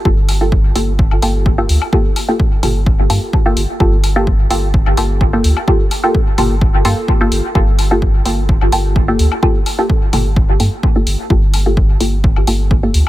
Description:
dub techno; 128 BPM; 4/4; straight; G minor; A4 = 440 Hz
filtered dub chord stab; stabs; 0.1-13.1 s; Bb3 to A4; -17 LUFS; equal; chorus, phaser, dub echo
pure sine sub bass; bass; 0.1-13.0 s; G1 to G2; -16 LUFS; equal; sidechain pumping
electronic kick drum; drums; 0.1-12.8 s; -14 LUFS; equal
electronic hi-hat; drums; 0.3-13.0 s; -23 LUFS; left 1 dB
electronic woodblock and toms; percussion; 0.3-13.1 s; -26 LUFS; left 4 dB; overdrive, sidechain pumping on perc, sidechain pumping on toms, dub echo
digital ambience; -11 LUFS; side -15 dB against mid
0.0-13.1 A section
0.0 Gm9

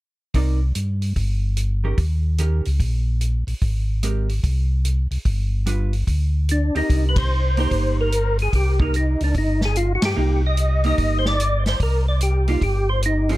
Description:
soul jazz organ trio; 147 BPM; 4/4; swing 65% on 8ths; C minor; A4 = 440 Hz
vintage hollow-body jazz guitar; accompaniment; 0.3-13.4 s; Eb3 to Eb5; -28 LUFS; right 5 dB; plate reverb
mellow tonewheel organ; bass; 0.3-13.4 s; G1 to G2; -20 LUFS; equal; slow rotary speaker
vintage drum kit; drums; 0.3-13.4 s; hi-hat, kick drum, ride cymbal, snare drum; -25 LUFS; equal
percussive tonewheel organ; melody; 6.5-13.4 s; D4 to Eb5; -23 LUFS; equal; slow rotary speaker, chorus vibrato, plate reverb, analog delay
little or no reverb; -18 LUFS; side -17 dB against mid
0.3-6.9 A section; 6.9-13.4 B section
band accent 7.1, 10.0
0.3 Cm9; 2.0 Eb7; 3.6 Abmaj9; 5.3 G7; 6.9 Cm7

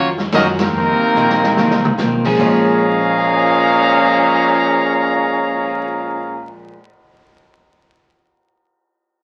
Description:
jazz, big band swing; 145 BPM; 4/4; swing 65% on 8ths; Bb minor; A4 = 440 Hz
bright trumpet section; melody; 0.0-6.5 s; C4 to Bb5; -18 LUFS; equal
bright trombone section; second line; 0.0-6.5 s; Bb2 to Eb4; -21 LUFS; equal
picked old ladder-braced acoustic guitar; accompaniment; 0.0-6.8 s; F2 to F4; -25 LUFS; equal
upright bass; bass; 0.0-6.7 s; Bb1 to Gb2; -30 LUFS; equal
swinging big-band drum kit; drums; 0.2-5.6 s; crash cymbal, cymbal swell, hi-hat, kick drum, ride cymbal, snare drum, toms; -25 LUFS; equal
warm baby grand piano; accompaniment; 2.2-6.8 s; Bb2 to Db5; -24 LUFS; equal
wet studio reverb, RT60 0.6 s; very old 78 rpm record, vinyl crackle; -15 LUFS; mono
0.0-2.4 A section; 2.4-5.7 B section
band accent 0.5; drum fill 1.2-2.0
0.0 Ebm9; 0.7 F7sus4; 2.4 Bbm7

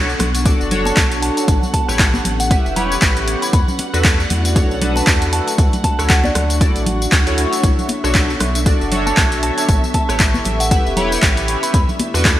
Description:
deep house; 117 BPM; 4/4; swing 57% on 16ths; B minor; A4 = 441 Hz
hollow soft pad; sustained chords; 0.0-12.4 s; A3 to C#6; -27 LUFS; equal; chorus, sidechain pumping
chorused polysynth; stabs; 0.0-12.4 s; D4 to E5; -22 LUFS; equal; phaser, sidechain pumping, digital delay
warm sub bass; bass; 0.0-12.4 s; E1 to E2; -21 LUFS; equal; tube saturation, sidechain pumping
granular cloud pad; texture; 0.0-12.4 s; C#4 to C#6; -29 LUFS; equal; built-in reverb, analog chorus, sidechain pumping
muted studio violin section; texture; 0.0-12.4 s; E5 to F#5; -30 LUFS; right 1 dB; sidechain pumping
punchy analog drum machine; drums; 0.1-12.4 s; handclaps, hi-hat, rim click, tambourine; -20 LUFS; equal; overdrive
congas; percussion; 0.2-12.1 s; -26 LUFS; equal
electronic kick drum; drums; 0.5-12.4 s; -16 LUFS; equal; overdrive
soft synth bell; melody; 0.9-11.8 s; D5 to B5; -24 LUFS; right 1 dB; chorus, vintage 12-bit sampler grit, digital delay
moderate lush hall reverb, RT60 2.0 s; bright 1980s-style digital production, vinyl crackle, faint mains hum; -13 LUFS; side -13 dB against mid
0.0-12.4 A section
0.0 Bm9; 1.5 A9; 3.5 E9sus4; 5.6 Dmaj7; 7.6 Bm9; 9.7 A9; 11.7 E9sus4

